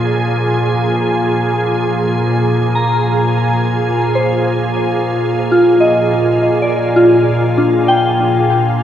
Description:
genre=ambient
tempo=free time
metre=none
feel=none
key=unclear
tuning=A4 = 440 Hz
part: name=soft additive organ-like pad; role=sustained chords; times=0.0-8.8 s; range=Bb2 to D5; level=-14 LUFS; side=equal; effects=ensemble chorus, built-in reverb
part: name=soft synth bell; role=arpeggios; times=2.8-8.8 s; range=D4 to Bb5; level=-14 LUFS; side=equal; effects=chorus, analog delay
room=wet echo chamber reverb, RT60 2.5 s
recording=echo-heavy mix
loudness=-12 LUFS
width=side -10 dB against mid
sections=0.0-8.8 A section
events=none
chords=0.0 Bb7; 2.2 Fm7/Bb

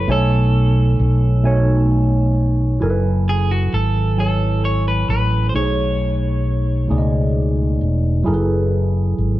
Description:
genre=slow six-eight R&B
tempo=44 BPM (dotted quarters)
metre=6/8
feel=straight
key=F# dorian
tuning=A4 = 440 Hz
part: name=electric guitar at the edge of break-up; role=melody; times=0.0-7.3 s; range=F#4 to C#5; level=-25 LUFS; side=right 2 dB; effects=none
part: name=tine electric piano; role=accompaniment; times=0.0-9.4 s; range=B2 to G#5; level=-20 LUFS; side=right 1 dB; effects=overdrive, phaser
part: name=fretless electric bass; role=bass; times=0.0-9.4 s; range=E1 to C#2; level=-17 LUFS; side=equal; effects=lush chorus
room=light reverb, digital ambience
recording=dark, warm production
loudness=-15 LUFS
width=side -15 dB against mid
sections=0.0-2.8 A section; 2.8-9.4 B section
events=none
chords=0.1 B13; 2.8 F#m11; 5.5 B13; 8.3 F#m11

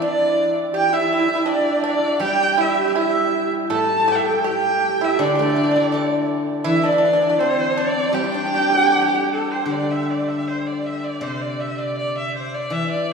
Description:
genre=chinese traditional, Chinese chamber ensemble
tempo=80 BPM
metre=2/4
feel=rubato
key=G zhi mode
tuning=A4 = 440 Hz
part: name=bright erhu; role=melody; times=0.0-13.1 s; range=A4 to A5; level=-21 LUFS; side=right 2 dB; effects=none
part: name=bright reedy xiao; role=second line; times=0.0-9.3 s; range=C5 to A5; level=-25 LUFS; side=left 1 dB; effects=none
part: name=pipa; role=second line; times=0.0-9.2 s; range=C4 to A4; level=-26 LUFS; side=right 4 dB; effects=none
part: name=warm horsehead fiddle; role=second line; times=0.0-9.2 s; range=C4 to A4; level=-24 LUFS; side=right 2 dB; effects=none
part: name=steel-string zither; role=accompaniment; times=0.0-13.1 s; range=A2 to D5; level=-25 LUFS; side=left 2 dB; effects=none
room=wet cathedral reverb, RT60 4.5 s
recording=recorded in a church or concert hall, studio reverb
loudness=-17 LUFS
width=side -5 dB against mid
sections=0.0-9.7 A section; 9.7-13.1 B section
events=none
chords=none

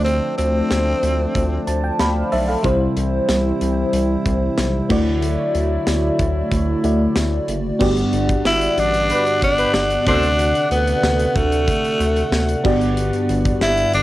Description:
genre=1980s-style pop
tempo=93 BPM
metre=4/4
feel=straight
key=G major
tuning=A4 = 444 Hz
part: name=raspy tenor saxophone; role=melody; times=0.0-1.6, 8.5-14.0 s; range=A3 to E4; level=-19 LUFS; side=equal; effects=cassette tape, analog delay
part: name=FM electric piano with soft pad layer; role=accompaniment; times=0.0-14.0 s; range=G2 to B5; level=-21 LUFS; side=equal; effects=chorus, phaser, cassette tape
part: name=dark brass ensemble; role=sustained chords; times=0.0-14.0 s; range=C3 to F#5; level=-26 LUFS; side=left 1 dB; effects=stereo widening, cassette tape
part: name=round analog bass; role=bass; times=0.0-14.0 s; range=F#1 to D2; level=-22 LUFS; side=equal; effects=none
part: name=modern studio drum kit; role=drums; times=0.1-14.0 s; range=crash cymbal, hi-hat, kick drum, snare drum, tambourine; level=-24 LUFS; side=equal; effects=cassette tape
part: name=mellow horn section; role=stabs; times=9.1-10.3 s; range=B3 to C5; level=-23 LUFS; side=left 1 dB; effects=cassette tape
room=light reverb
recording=home recording on cassette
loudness=-16 LUFS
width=side -15 dB against mid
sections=0.0-7.8 A section; 7.8-14.0 B section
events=FM electric piano fill 1.4-2.6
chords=0.0 Dm7; 2.6 C; 4.9 Dadd9; 7.8 Gmaj7; 10.1 D7; 12.6 Gmaj7

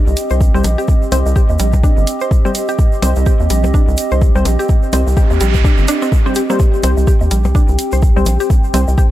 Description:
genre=minimal techno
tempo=126 BPM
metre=4/4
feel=swing 58% on 16ths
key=C minor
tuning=A4 = 441 Hz
part: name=warbly tape-like pad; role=texture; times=0.0-9.1 s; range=C4 to G5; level=-21 LUFS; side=right 1 dB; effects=chorus, built-in reverb, sidechain pumping
part: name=rubbery square bass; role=bass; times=0.1-9.0 s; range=G1 to Eb2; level=-14 LUFS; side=equal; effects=sidechain pumping
part: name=tube shaker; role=percussion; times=0.1-9.1 s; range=none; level=-31 LUFS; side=right 4 dB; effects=none
part: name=electronic hi-hat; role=drums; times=0.2-8.9 s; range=none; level=-22 LUFS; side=equal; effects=none
part: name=mallet-like synth pluck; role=riff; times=0.3-9.0 s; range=G3 to C5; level=-23 LUFS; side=right 1 dB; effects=chorus, vintage 12-bit sampler grit, sidechain pumping, tape echo
part: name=electronic kick drum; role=drums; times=0.4-9.1 s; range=none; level=-12 LUFS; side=equal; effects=none
part: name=wavetable chord stab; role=stabs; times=0.5-8.8 s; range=G3 to C5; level=-23 LUFS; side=left 3 dB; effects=tape echo
part: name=percussion blips and woodblock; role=percussion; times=0.6-9.0 s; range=none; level=-25 LUFS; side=left 4 dB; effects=tape echo
part: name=noise sweep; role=sound effects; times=5.1-6.6 s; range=none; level=-26 LUFS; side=right 5 dB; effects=none
room=digital ambience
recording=dry, gritty hardware recording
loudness=-11 LUFS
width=side -14 dB against mid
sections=0.0-9.1 A section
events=noise sweep 5.1-6.6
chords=0.0 C5

